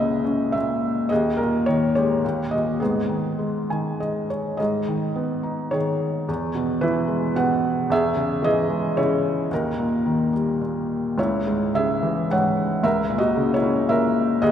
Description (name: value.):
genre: classical, lyrical solo piano.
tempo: 97-116 BPM.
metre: 3/4.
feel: rubato.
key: G# minor.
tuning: A4 = 442 Hz.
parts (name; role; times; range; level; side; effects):
felt-muted upright piano; solo; 0.0-14.5 s; C#2 to G#5; -20 LUFS; equal; none.
room: wet church reverb, RT60 2.6 s.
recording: recorded in a church or concert hall.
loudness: -20 LUFS.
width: side -9 dB against mid.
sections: 0.0-4.6 A section; 4.6-14.5 A section.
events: felt piano fill 3.4-4.6.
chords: 0.0 A#dim/C#; 1.1 D#sus4; 2.2 D#7; 2.8 G#m; 6.3 E; 7.9 C#m/E; 9.5 D#; 11.2 C#m; 12.8 A#dim/C#.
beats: 0.54 | 1.11 1.67 2.24 | 2.81 3.38 3.99 | 4.60 5.17 5.73 | 6.29 6.82 7.37 | 7.91 8.44 8.97 | 9.52 10.07 10.62 | 11.18 11.75 12.30 | 12.84 13.36 13.88 | 14.42.